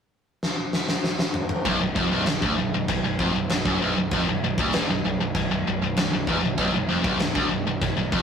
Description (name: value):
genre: heavy metal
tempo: 97 BPM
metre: 4/4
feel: straight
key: B minor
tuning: A4 = 440 Hz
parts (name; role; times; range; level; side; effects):
- big rock drum kit; drums; 0.4-8.2 s; china cymbal, kick drum, snare drum, toms; -26 LUFS; left 1 dB; none
- heavy high-gain guitar; riff; 1.7-8.2 s; B1 to F#2; -28 LUFS; left 7 dB; distortion
- high-gain distorted guitar; riff; 1.7-8.2 s; B1 to F#2; -25 LUFS; right 3 dB; distortion
- fuzz picked electric bass; bass; 1.7-8.2 s; B0 to F#1; -31 LUFS; equal; overdrive
room: moderate stone room reverb, RT60 1.0 s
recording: rough rehearsal-room recording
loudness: -21 LUFS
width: side -7 dB against mid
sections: 0.0-1.7 A section; 1.7-8.2 B section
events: drum fill 0.4-1.7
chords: 0.0 N.C.; 1.7 Bm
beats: 0.42 1.03 | 1.65 2.27 2.89 3.50 | 4.12 4.74 5.35 5.97 | 6.59 7.20 7.82